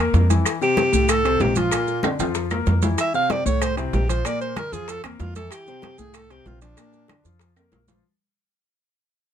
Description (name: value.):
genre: Afro-Cuban jazz.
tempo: 190 BPM.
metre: 4/4.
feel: straight.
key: unclear.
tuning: A4 = 440 Hz.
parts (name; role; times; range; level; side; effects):
clear concert grand piano; accompaniment; 0.0-8.0 s; A2 to Bb4; -26 LUFS; left 6 dB; none.
upright bass; bass; 0.0-8.0 s; Bb1 to F2; -22 LUFS; equal; none.
bongos; percussion; 0.1-8.0 s; none; -32 LUFS; left 10 dB; none.
congas; percussion; 0.1-8.0 s; none; -29 LUFS; left 1 dB; none.
maracas; percussion; 0.1-8.0 s; none; -33 LUFS; right 8 dB; none.
timbales; percussion; 0.1-8.0 s; none; -29 LUFS; right 5 dB; none.
claves; percussion; 0.5-7.7 s; none; -31 LUFS; left 8 dB; none.
clear alto saxophone; melody; 0.6-7.4 s; C4 to F5; -23 LUFS; right 2 dB; none.
room: little or no reverb.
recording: close, detailed microphones.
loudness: -18 LUFS.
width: side -9 dB against mid.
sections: 0.0-8.0 A section.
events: fade-out 0.0-8.0; alto saxophone solo 0.0-8.0; drum fill 2.0-3.0, 7.6-8.0.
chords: 0.5 Fmaj7; 1.7 Bb; 3.0 Fmaj7; 4.2 Bb; 5.5 Fmaj7; 6.8 Bb.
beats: 0.14 | 0.46 0.77 1.09 1.40 | 1.72 2.04 2.35 2.67 | 2.98 3.30 3.62 3.93 | 4.25 4.56 4.88 5.20 | 5.51 5.83 6.14 6.46 | 6.78 7.09 7.41 7.72.